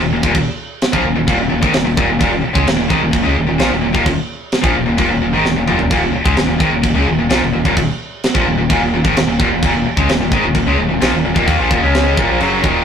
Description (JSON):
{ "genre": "heavy metal", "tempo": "129 BPM", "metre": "4/4", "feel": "straight", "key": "Eb minor", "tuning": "A4 = 442 Hz", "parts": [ { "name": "tight distorted guitar", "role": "riff", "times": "0.0-12.8 s", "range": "Eb2 to Db4", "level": "-15 LUFS", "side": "left 2 dB", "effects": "distortion" }, { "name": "tight distorted guitar", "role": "riff", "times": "0.0-12.8 s", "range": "Eb2 to Db4", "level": "-20 LUFS", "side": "right 1 dB", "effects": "distortion" }, { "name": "metallic FM bass", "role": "bass", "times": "0.0-12.8 s", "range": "Eb1 to Eb2", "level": "-22 LUFS", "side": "equal", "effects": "none" }, { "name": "tight metal drum kit", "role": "drums", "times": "0.2-12.7 s", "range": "crash cymbal, kick drum, snare drum, toms", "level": "-18 LUFS", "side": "right 1 dB", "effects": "none" } ], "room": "moderate studio reverb, RT60 0.6 s", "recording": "rough rehearsal-room recording, tube saturation", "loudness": "-12 LUFS", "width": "side -7 dB against mid", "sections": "0.0-12.8 A section", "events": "drum fill 5.5-5.9", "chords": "0.0 Eb5" }